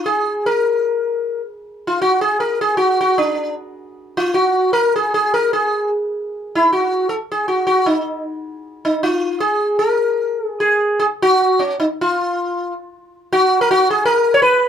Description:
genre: alpine folk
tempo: 154 BPM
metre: 3/4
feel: swing 54% on 8ths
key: unclear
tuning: A4 = 440 Hz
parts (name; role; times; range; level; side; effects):
- sitar; solo; 0.0-14.7 s; Db4 to Db5; -15 LUFS; equal; none
room: wet small room reverb, RT60 0.5 s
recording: heard from further back in the room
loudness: -15 LUFS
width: side -8 dB against mid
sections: 0.0-1.6 A section; 1.6-11.0 A section; 11.0-14.7 B section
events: none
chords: none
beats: 0.07 | 0.45 0.84 1.23 | 1.62 2.01 2.40 | 2.79 3.18 3.57 | 3.95 4.34 4.73 | 5.12 5.51 5.90 | 6.30 6.69 7.08 | 7.47 7.86 8.25 | 8.64 9.03 9.41 | 9.80 10.19 10.58 | 10.98 11.37 11.76 | 12.15 12.53 12.92 | 13.30 13.69 14.07 | 14.46

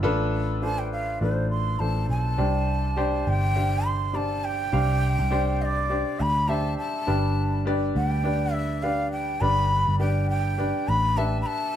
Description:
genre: piano-driven pop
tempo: 102 BPM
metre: 4/4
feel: swing 56% on 16ths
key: unclear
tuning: A4 = 436 Hz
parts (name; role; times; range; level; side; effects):
- warm concert grand piano; accompaniment; 0.0-11.8 s; G2 to F5; -28 LUFS; equal; none
- vintage muted picked electric bass; bass; 0.0-11.4 s; G1 to D2; -25 LUFS; equal; none
- breathy bright bansuri; melody; 0.6-11.8 s; C5 to C6; -27 LUFS; equal; none
room: moderate studio reverb, RT60 0.5 s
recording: band playing live in one room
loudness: -22 LUFS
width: side -10 dB against mid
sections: 0.0-2.4 A section; 2.4-11.8 B section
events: none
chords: 0.0 F6; 2.4 Csus2; 7.1 G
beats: | 0.04 0.63 1.22 1.80 | 2.39 2.98 3.56 4.15 | 4.73 5.32 5.91 6.49 | 7.08 7.66 8.25 8.84 | 9.42 10.01 10.59 11.18

